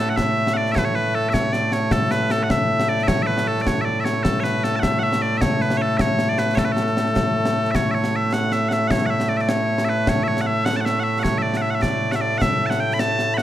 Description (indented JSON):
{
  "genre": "scottish traditional, Scottish pipe music",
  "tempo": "103 BPM (dotted quarters)",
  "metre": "6/8",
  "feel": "straight",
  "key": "A major",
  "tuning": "A4 = 442 Hz",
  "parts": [
    { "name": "loud bright bagpipes", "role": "melody", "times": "0.0-13.4 s", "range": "A2 to B5", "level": "-19 LUFS", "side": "equal", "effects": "none" },
    { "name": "concert snare drum and concert bass drum", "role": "drums", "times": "0.2-13.4 s", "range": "none", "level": "-24 LUFS", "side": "left 1 dB", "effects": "none" }
  ],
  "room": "moderate recital hall reverb, RT60 1.4 s",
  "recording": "none",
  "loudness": "-18 LUFS",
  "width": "side -12 dB against mid",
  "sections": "0.0-7.8 A section; 7.8-13.4 B section",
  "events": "none",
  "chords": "none",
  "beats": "0.18 | 0.76 1.34 | 1.92 2.51 | 3.09 3.67 | 4.25 4.84 | 5.42 6.00 | 6.58 7.17 | 7.75 8.33 | 8.91 9.50 | 10.08 10.66 | 11.24 11.83 | 12.41 12.99"
}